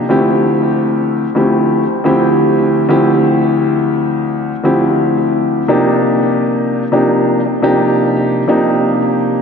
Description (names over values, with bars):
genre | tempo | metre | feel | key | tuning
hip hop | 86 BPM | 4/4 | swing 56% on 16ths | D minor | A4 = 440 Hz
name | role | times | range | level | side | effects
dark grand piano | solo | 0.0-9.4 s | D2 to G4 | -11 LUFS | equal | high-pass filter, low-pass filter, ping-pong delay
room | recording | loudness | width
wet lush hall reverb, RT60 2.7 s | dreamy mix soaked in reverb | -11 LUFS | side -6 dB against mid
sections
0.1-9.4 A section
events
none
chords
0.1 Dm11; 5.7 Cm11